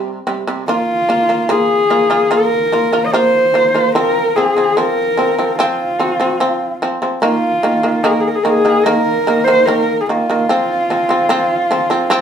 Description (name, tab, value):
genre	mongolian traditional, Mongolian folk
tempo	73 BPM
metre	4/4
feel	straight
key	unclear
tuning	A4 = 439 Hz
part	shamisen	arpeggios	0.0-12.2 s	C3 to F4	-16 LUFS	right 1 dB	none
part	dark horsehead fiddle	melody	0.7-12.2 s	F4 to Eb5	-14 LUFS	equal	none
room	wet studio reverb, RT60 0.7 s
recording	band playing live in one room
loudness	-12 LUFS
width	side -8 dB against mid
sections	0.7-12.2 A section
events	none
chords	0.0 C5; 0.7 Bb5; 4.0 F5; 7.2 Eb5; 10.5 F5